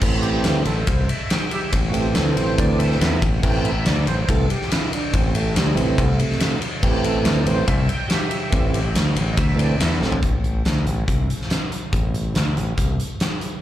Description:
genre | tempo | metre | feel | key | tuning
blues rock power trio and southern rock | 141 BPM | 4/4 | straight | A minor | A4 = 440 Hz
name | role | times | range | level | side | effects
tonewheel organ | sustained chords | 0.0-10.2 s | C3 to G5 | -24 LUFS | right 3 dB | overdrive, chorus vibrato, slow rotary speaker
growling fingered electric bass | bass | 0.0-13.0 s | A1 to E2 | -21 LUFS | equal | overdrive
huge arena drum kit | drums | 0.0-13.5 s | crash cymbal, hi-hat, kick drum, ride cymbal, snare drum, toms | -21 LUFS | equal | none
room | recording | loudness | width
light reverb, small room ambience | live gig heard through the venue's PA, club reverb | -18 LUFS | side -12 dB against mid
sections
0.0-10.2 A section; 10.2-13.6 B section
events
tonewheel organ solo 0.0-10.2; drum fill 10.0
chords
0.0 Am

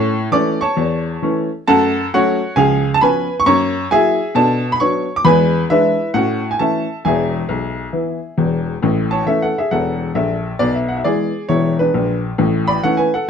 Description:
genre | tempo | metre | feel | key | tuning
jazz, stride piano | 134 BPM | 4/4 | swing 66% on 8ths | A major | A4 = 440 Hz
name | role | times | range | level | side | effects
clear upright piano | solo | 0.0-13.3 s | E1 to D6 | -14 LUFS | equal | none
room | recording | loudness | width
moderate club reverb, RT60 0.5 s | dark, warm production | -14 LUFS | side -7 dB against mid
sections
0.0-8.8 A section; 8.8-13.3 B section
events
none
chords
0.0 A; 1.7 F#m; 2.6 C#7; 3.5 F#7; 4.4 Bm; 5.3 E7; 6.2 A; 7.0 E; 8.8 A; 10.6 E7/B; 12.4 A

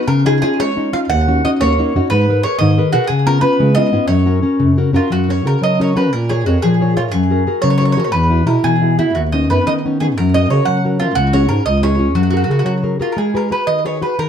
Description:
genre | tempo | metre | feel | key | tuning
italian folk, Italian serenade | 119 BPM (dotted quarters) | 6/8 | straight | F# major | A4 = 440 Hz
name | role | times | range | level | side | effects
nylon-string guitar | accompaniment | 0.0-14.3 s | B2 to C#5 | -16 LUFS | left 2 dB | none
mandolin | melody | 0.1-14.3 s | E4 to F#5 | -18 LUFS | right 1 dB | slapback echo
dark bass clarinet | bass | 1.1-13.0 s | C#2 to F#3 | -16 LUFS | right 1 dB | none
room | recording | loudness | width
light reverb | dark, warm production | -12 LUFS | side -8 dB against mid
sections
0.0-5.1 A section; 5.1-13.2 B section; 13.2-14.3 A section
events
none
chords
0.1 C#add9; 1.1 D#m7; 2.1 G#madd9; 3.1 C#7; 4.1 F#; 6.1 A#m7; 7.1 F#add9; 8.1 Eadd9; 9.1 Badd9/D#; 10.2 F#; 11.2 C#sus4; 11.7 C#; 12.2 F#add9; 13.2 G#m7

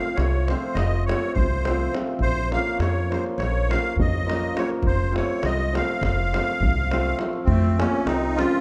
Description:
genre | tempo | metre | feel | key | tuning
balkan folk, Balkan wedding band | 205 BPM (eighths) | 9/8 | straight | unclear | A4 = 442 Hz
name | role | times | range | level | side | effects
musette accordion | melody | 0.0-8.6 s | C4 to F5 | -30 LUFS | equal | none
hammered dulcimer | accompaniment | 0.0-8.6 s | F3 to F4 | -30 LUFS | equal | none
upright bass | bass | 0.2-8.4 s | F1 to F2 | -27 LUFS | equal | none
davul | percussion | 0.2-8.6 s | none | -30 LUFS | equal | none
clear clarinet | second line | 7.5-8.6 s | A3 to Db4 | -27 LUFS | equal | none
room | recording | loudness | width
light reverb | close, detailed microphones | -23 LUFS | mono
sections
0.0-7.5 A section; 7.5-8.6 A section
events
none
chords
0.0 F; 2.2 Bbm; 4.8 F

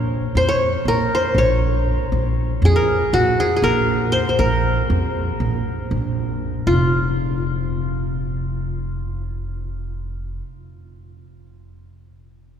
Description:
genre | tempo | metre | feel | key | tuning
Turkish makam ensemble | 238 BPM (eighths) | 9/8 | straight | Bb makam nihavent | A4 = 439 Hz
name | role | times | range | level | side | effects
qanun | melody | 0.0-10.4 s | F4 to Db5 | -20 LUFS | left 1 dB | none
upright bass | bass | 0.0-10.4 s | F1 to F2 | -20 LUFS | equal | none
room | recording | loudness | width
wet cathedral reverb, RT60 7.3 s | recorded in a church or concert hall | -17 LUFS | side -8 dB against mid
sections
0.0-6.7 A section; 6.7-8.9 B section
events
none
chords
none

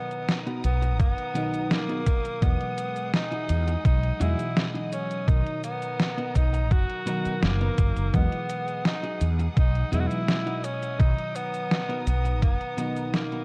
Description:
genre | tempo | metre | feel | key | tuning
vaporwave | 84 BPM | 4/4 | straight | B major | A4 = 440 Hz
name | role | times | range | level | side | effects
bright tenor saxophone | melody | 0.0-13.4 s | A#3 to F#4 | -34 LUFS | equal | tape echo
FM electric piano with soft pad layer | accompaniment | 0.0-13.4 s | B2 to D#5 | -35 LUFS | equal | phaser, lush chorus
warm studio string section | sustained chords | 0.0-13.4 s | G#4 to D#6 | -46 LUFS | equal | none
detuned 8-bit digital drum machine | drums | 0.1-13.4 s | cabasa, hi-hat, snare drum | -30 LUFS | equal | overdrive
twelve-string electric guitar | riff | 0.5-13.4 s | B3 to B4 | -39 LUFS | equal | lush chorus
mellow fretless electric bass | bass | 0.6-12.6 s | F#1 to E2 | -27 LUFS | equal | ensemble chorus
electronic kick drum | drums | 1.0-12.6 s | none | -25 LUFS | equal | overdrive
room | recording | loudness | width
light reverb, digital ambience | cassette tape | -26 LUFS | mono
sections
0.0-13.4 A section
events
fade-out 11.9-13.4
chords
0.0 Bmaj7; 2.4 Emaj9; 5.3 Bmaj7; 8.1 Emaj9; 11.0 Bmaj7

